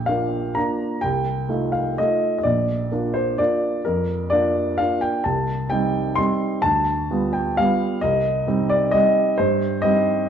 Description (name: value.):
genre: classical, piano waltz.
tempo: 129 BPM.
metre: 3/4.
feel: uneven beats, rubato.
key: Bb major.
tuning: A4 = 442 Hz.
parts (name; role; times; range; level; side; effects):
clear upright piano; solo; 0.0-10.3 s; Bb1 to C6; -19 LUFS; equal; none.
room: wet recital hall reverb, RT60 1.8 s.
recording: dark, warm production.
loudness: -19 LUFS.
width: side -8 dB against mid.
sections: 0.0-10.3 A section.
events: none.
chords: 0.0 Bb; 1.0 F7/C; 2.4 Bb; 5.2 Cm; 6.6 G7/D; 8.0 Cm.